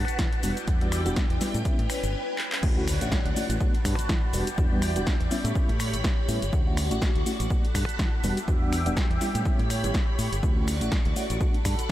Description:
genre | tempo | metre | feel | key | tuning
filtered disco house | 123 BPM | 4/4 | swing 56% on 16ths | D major | A4 = 444 Hz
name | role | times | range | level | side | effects
phased string machine | sustained chords | 0.0-11.9 s | C#4 to D6 | -33 LUFS | equal | ensemble chorus, phaser, sidechain pumping, low-pass filter
modern bright fingered electric bass | bass | 0.0-11.9 s | E1 to E3 | -29 LUFS | equal | sidechain pumping, low-pass filter
punchy analog drum machine | drums | 0.1-11.9 s | cabasa, crash cymbal, finger snaps, handclaps, hi-hat, snare drum | -33 LUFS | equal | overdrive, sidechain pumping on hats, sidechain pumping on perc, sidechain pumping on cymbals
electronic kick drum | drums | 0.2-11.9 s | none | -25 LUFS | equal | none
mellow reed electric piano | accompaniment | 0.4-11.5 s | G3 to F#4 | -32 LUFS | equal | fast tremolo, phaser, sidechain pumping, low-pass filter
impact | sound effects | 2.6-4.6 s | none | -37 LUFS | equal | none
room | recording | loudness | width
light reverb | none | -23 LUFS | side -14 dB against mid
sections
0.0-2.6 A section; 2.6-11.9 B section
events
break 2.1-2.6; drum fill 2.4; drop 2.6-11.9; impact 2.6-4.6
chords
0.4 Em7; 1.4 A9 (rootless); 2.6 Dmaj7; 3.6 Gmaj9; 4.3 Em7; 5.3 A9; 6.5 Dmaj7; 7.5 Gmaj9; 8.2 Em7; 9.2 A9; 10.4 Dmaj7; 11.4 Gmaj9

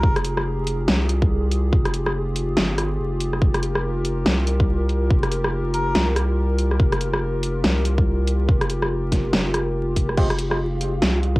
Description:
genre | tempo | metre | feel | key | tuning
deep dubstep | 142 BPM | 4/4 | swing 60% on 16ths, half-time | F minor | A4 = 444 Hz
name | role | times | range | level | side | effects
melodica | melody | 0.0-0.2, 5.7-6.1 s | Bb4 | -30 LUFS | left 1 dB | cassette tape, dub echo
dark analog pad | sustained chords | 0.0-11.4 s | F4 to Bb4 | -27 LUFS | equal | chorus, cassette tape
saturated sub bass | bass | 0.0-11.4 s | F1 to C2 | -23 LUFS | equal | none
electronic kick drum | drums | 0.0-11.4 s | none | -19 LUFS | equal | cassette tape
dubstep drum kit | drums | 0.2-11.3 s | crash cymbal, hi-hat, rim click, snare drum | -23 LUFS | equal | cassette tape
percussive organ stab | stabs | 10.2-10.3 s | Ab3 to G4 | -28 LUFS | right 1 dB | chorus, cassette tape, dub echo
flickering grainy texture | texture | 10.6-11.4 s | F4 | -33 LUFS | equal | built-in reverb, cassette tape
room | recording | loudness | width
light reverb | home recording on cassette, vinyl crackle | -19 LUFS | side -21 dB against mid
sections
0.0-11.4 A section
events
none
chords
0.0 Fmadd9

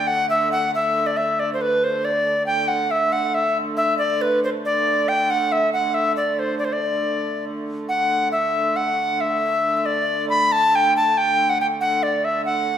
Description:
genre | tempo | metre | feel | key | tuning
medieval dance | 92 BPM (dotted quarters) | 6/8 | straight | D mixolydian | A4 = 440 Hz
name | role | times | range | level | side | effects
bright reedy tenor recorder | melody | 0.0-12.8 s | B4 to B5 | -18 LUFS | equal | none
dark hurdy-gurdy | drone | 0.0-12.8 s | D3 to A3 | -28 LUFS | right 1 dB | none
room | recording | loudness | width
wet recital hall reverb, RT60 1.3 s | minimal, uncompressed stereo recording | -18 LUFS | side -9 dB against mid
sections
0.0-7.9 A section; 7.9-12.8 A section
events
none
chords
none

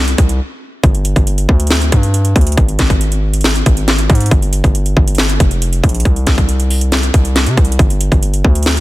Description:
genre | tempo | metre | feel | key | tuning
hip hop, trap | 138 BPM | 4/4 | half-time | G phrygian | A4 = 440 Hz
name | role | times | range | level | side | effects
distorted 808-style bass | bass | 0.0-8.8 s | F1 to C3 | -14 LUFS | equal | distortion
trap drum kit | drums | 0.1-8.8 s | handclaps, hi-hat, kick drum, snare drum | -12 LUFS | equal | overdrive
room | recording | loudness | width
little or no reverb | dense, heavily limited modern master | -10 LUFS | side -17 dB against mid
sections
0.0-8.8 A section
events
break 0.4-0.8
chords
none

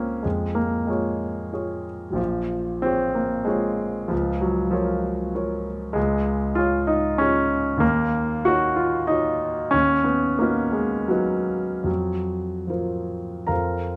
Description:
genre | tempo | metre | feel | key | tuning
classical, romantic character piece for solo piano | 72-100 BPM | 3/4 | rubato | unclear | A4 = 440 Hz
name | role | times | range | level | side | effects
warm grand piano | solo | 0.0-14.0 s | Bb1 to Bb5 | -24 LUFS | equal | none
room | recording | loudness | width
moderate recital hall reverb, RT60 1.4 s | close, detailed microphones | -24 LUFS | mono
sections
0.0-14.0 A section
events
none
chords
0.2 Db/F; 2.2 Bbm7; 4.1 Bbm/Db; 6.0 Db; 7.8 Ebm7; 9.7 B/D#; 11.9 Fsus4

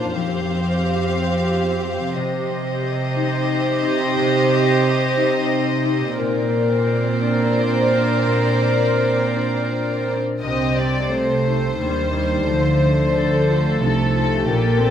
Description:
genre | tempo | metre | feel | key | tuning
cinematic, emotional film score for orchestra | 82-91 BPM | 3/4 | rubato | C dorian | A4 = 440 Hz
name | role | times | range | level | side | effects
rich studio violin section | second line | 0.0-14.9 s | G4 to F5 | -24 LUFS | left 2 dB | none
warm studio viola section | accompaniment | 0.0-14.9 s | G3 to Bb4 | -23 LUFS | right 3 dB | none
concert harp | arpeggios | 0.0-14.9 s | Bb2 to C5 | -24 LUFS | left 6 dB | none
warm studio cello section | bass | 0.0-14.9 s | F2 to Eb3 | -23 LUFS | right 3 dB | none
warm studio violin section | melody | 10.4-14.9 s | A4 to Eb5 | -25 LUFS | left 4 dB | none
dark studio double bass section | bass | 10.4-14.9 s | Bb1 to Eb2 | -23 LUFS | right 2 dB | none
room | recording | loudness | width
moderate scoring stage reverb, RT60 1.7 s | none | -17 LUFS | side -9 dB against mid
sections
0.0-10.4 A section; 10.4-14.9 A section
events
none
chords
0.2 Fsus2; 2.2 Cm; 6.2 Bbadd9; 10.4 Cm; 12.5 Dm

